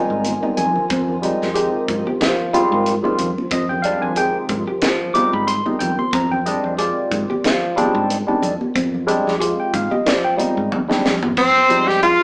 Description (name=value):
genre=electric jazz fusion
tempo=92 BPM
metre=4/4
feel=swing 56% on 16ths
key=F dorian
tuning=A4 = 439 Hz
part: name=mellow tine electric piano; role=accompaniment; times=0.0-12.2 s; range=G3 to D6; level=-22 LUFS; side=equal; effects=phaser
part: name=granular cloud pad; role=sustained chords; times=0.0-11.3 s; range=Eb3 to F4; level=-32 LUFS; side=equal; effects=built-in reverb
part: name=electric guitar at the edge of break-up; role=stabs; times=0.0-12.2 s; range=C4 to Ab4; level=-27 LUFS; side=equal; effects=none
part: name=fingered electric bass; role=bass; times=0.1-12.1 s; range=Eb2 to F3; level=-27 LUFS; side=equal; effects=none
part: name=crisp fusion drum kit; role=drums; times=0.2-12.2 s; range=crash cymbal, hi-hat, kick drum, snare drum, toms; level=-26 LUFS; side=equal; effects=none
part: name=congas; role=percussion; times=0.3-11.7 s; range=none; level=-30 LUFS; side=equal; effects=none
part: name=clear tenor saxophone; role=melody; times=11.4-12.2 s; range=C4 to G4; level=-15 LUFS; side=equal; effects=none
part: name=raw garage guitar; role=second line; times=11.4-12.2 s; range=C5 to G5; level=-23 LUFS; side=equal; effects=overdrive
room=moderate large studio reverb, RT60 0.9 s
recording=band playing live in one room, small speaker sound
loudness=-19 LUFS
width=mono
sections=0.0-11.4 A section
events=drum fill 0.2-0.9, 10.7-11.4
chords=0.0 Fm9